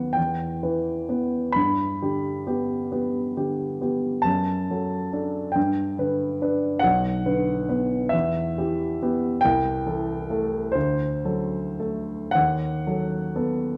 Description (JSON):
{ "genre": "classical, romantic nocturne for solo piano", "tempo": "35-48 BPM (dotted quarters)", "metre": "6/8", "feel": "rubato", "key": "unclear", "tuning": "A4 = 441 Hz", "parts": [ { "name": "warm baby grand piano", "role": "solo", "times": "0.0-13.8 s", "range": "B1 to B5", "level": "-25 LUFS", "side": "equal", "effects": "none" } ], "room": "moderate recital hall reverb, RT60 1.6 s", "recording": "none", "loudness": "-25 LUFS", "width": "mono", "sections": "0.0-13.8 A section", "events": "none", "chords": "0.2 Em; 1.6 G; 4.3 D/F#; 5.6 G; 6.8 Bm; 8.1 Em; 9.4 Am7/C; 10.8 D7; 12.4 B7/D#" }